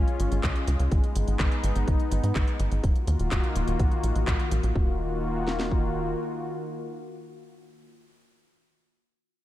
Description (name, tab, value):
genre	italo disco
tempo	125 BPM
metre	4/4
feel	straight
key	Eb minor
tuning	A4 = 440 Hz
part	warm analog pad	sustained chords	0.0-7.8 s	Eb3 to Gb4	-31 LUFS	left 2 dB	chorus
part	tight sequencer bass	bass	0.0-6.2 s	Eb1 to Ab2	-27 LUFS	equal	none
part	house drum kit	drums	0.1-4.7 s	handclaps, hi-hat	-36 LUFS	equal	studio reverb
part	house drum kit	drums	0.4-5.8 s	kick drum, snare drum	-26 LUFS	equal	studio reverb
room	light reverb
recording	dark, warm production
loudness	-24 LUFS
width	side -14 dB against mid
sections	0.0-4.8 A section; 4.8-8.6 B section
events	none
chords	0.0 Db; 0.9 Abm; 2.8 Ebmadd9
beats	0.43 | 0.92 1.40 1.88 2.35 | 2.83 3.31 3.79 4.28 | 4.75 5.24 5.71 6.20 | 6.67 7.16 7.63